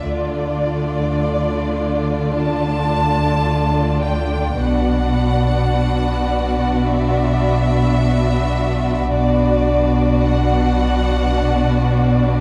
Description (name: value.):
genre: cinematic.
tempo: 53 BPM.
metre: 4/4.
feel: straight.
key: unclear.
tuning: A4 = 440 Hz.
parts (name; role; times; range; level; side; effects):
rich studio violin section; melody; 0.0-12.4 s; D5 to A5; -26 LUFS; equal; none.
concert harp; texture; 0.0-0.6, 8.0-12.4 s; none; barely audible; none; none.
rich chamber violin section; second line; 0.1-12.4 s; F4 to D5; -26 LUFS; equal; none.
rich chamber viola section; accompaniment; 0.1-12.4 s; A3 to D4; -25 LUFS; equal; none.
dark chamber cello section; bass; 0.1-12.4 s; B2 to D3; -26 LUFS; equal; none.
rich chamber double bass section; bass; 0.1-12.4 s; B1 to D2; -24 LUFS; equal; none.
sub bass with octave; drone; 0.1-12.4 s; B1 to D2; -25 LUFS; equal; none.
rich chamber violin section; texture; 4.6-12.4 s; F#5 to B5; -34 LUFS; equal; none.
room: moderate scoring stage reverb, RT60 2.0 s.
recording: dark, warm production.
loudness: -18 LUFS.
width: mono.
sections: 0.0-12.4 A section.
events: none.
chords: 0.0 Dm; 4.6 Bm.